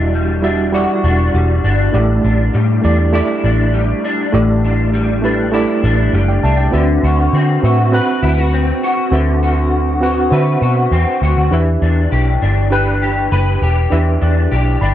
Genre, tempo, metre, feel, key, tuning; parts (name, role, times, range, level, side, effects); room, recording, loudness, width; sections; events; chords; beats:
indie pop; 100 BPM; 4/4; straight; E minor; A4 = 440 Hz
electric guitar through a small old amp; accompaniment; 0.0-14.9 s; A2 to B4; -18 LUFS; left 3 dB; ensemble chorus, warbly pitch drift
reed electric piano; accompaniment; 0.0-14.9 s; G3 to B5; -19 LUFS; right 4 dB; fast tremolo
vintage muted picked electric bass; bass; 0.0-14.9 s; E1 to D3; -14 LUFS; equal
light reverb; -12 LUFS; side -11 dB against mid
0.0-11.5 A section; 11.5-14.9 B section
reed electric piano fill 14.5-14.9
0.0 Em9; 1.9 A7sus4; 6.7 D13; 11.5 Em7
0.14 0.74 1.34 | 1.94 2.54 3.14 3.73 | 4.33 4.93 5.53 6.13 | 6.73 7.33 7.93 8.53 | 9.12 9.72 10.32 10.92 | 11.52 12.12 12.72 13.32 | 13.91 14.51